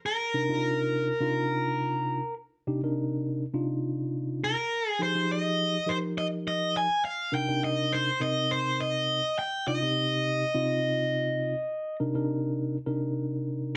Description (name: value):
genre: blues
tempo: 103 BPM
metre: 4/4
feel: swing 54% on 16ths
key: C minor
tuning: A4 = 439 Hz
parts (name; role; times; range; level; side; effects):
- overdriven electric guitar; melody; 0.1-12.0 s; Bb4 to Ab5; -30 LUFS; equal; none
- mellow tine electric piano; accompaniment; 0.3-13.8 s; C3 to Bb4; -32 LUFS; equal; none
room: moderate studio reverb, RT60 0.8 s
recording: none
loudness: -29 LUFS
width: mono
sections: 0.0-13.8 A section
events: none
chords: 0.3 Cm7; 5.0 Fm7; 7.3 Cm7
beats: | 0.33 0.91 1.50 2.08 | 2.66 3.25 3.83 4.41 | 4.99 5.58 6.16 6.74 | 7.33 7.91 8.49 9.07 | 9.66 10.24 10.82 11.41 | 11.99 12.57 13.16 13.74